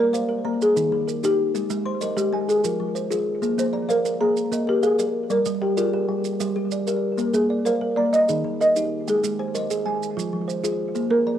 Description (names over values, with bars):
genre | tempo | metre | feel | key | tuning
southern african traditional, mbira-style interlocking cycle | 128 BPM (dotted quarters) | 12/8 | straight | Bb mixolydian | A4 = 442 Hz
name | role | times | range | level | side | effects
folk marimba with soft mallets | melody | 0.0-11.4 s | F4 to Eb5 | -21 LUFS | equal | cassette tape
kalimba | arpeggios | 0.0-11.4 s | Eb3 to C6 | -26 LUFS | left 6 dB | cassette tape
kalimba | arpeggios | 0.0-11.4 s | Eb3 to Bb5 | -27 LUFS | right 7 dB | cassette tape, tape echo
maracas | percussion | 0.1-11.1 s | none | -36 LUFS | right 9 dB | none
room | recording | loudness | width
wet studio reverb, RT60 0.6 s | home recording on cassette | -20 LUFS | side -10 dB against mid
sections
0.0-11.4 A section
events
none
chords
0.0 Bb; 0.6 Eb; 1.5 Ab; 2.5 Fm; 3.4 Bb; 5.3 Gm; 7.2 Bb; 8.1 Eb; 9.1 Ab; 10.0 Fm